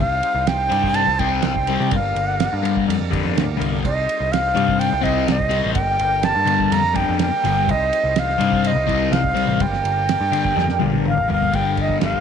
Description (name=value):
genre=psychedelic rock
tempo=125 BPM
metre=4/4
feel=straight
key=G minor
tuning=A4 = 442 Hz
part: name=bright reedy concert flute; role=melody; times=0.0-12.2 s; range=Eb5 to Bb5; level=-20 LUFS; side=equal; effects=slapback echo
part: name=overdriven tonewheel organ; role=sustained chords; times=0.0-12.2 s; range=D3 to C5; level=-30 LUFS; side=right 13 dB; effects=chorus vibrato, slow rotary speaker
part: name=picked electric bass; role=bass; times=0.0-12.2 s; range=G1 to C3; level=-24 LUFS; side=right 1 dB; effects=none
part: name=cloth-damped thuddy drum kit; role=drums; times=0.2-12.2 s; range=kick drum, ride cymbal, snare drum, toms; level=-26 LUFS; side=right 6 dB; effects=none
part: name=fuzz guitar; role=riff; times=0.7-12.2 s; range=G2 to C4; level=-21 LUFS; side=left 10 dB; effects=distortion, phaser
room=moderate plate reverb, RT60 1.9 s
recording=1960s-style stereo with parts hard left and right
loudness=-17 LUFS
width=side -7 dB against mid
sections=0.0-11.5 A section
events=drum fill 10.6-11.5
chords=0.0 Cm; 1.9 Gm; 3.8 Cm; 5.8 Gm; 7.7 Cm; 9.6 Gm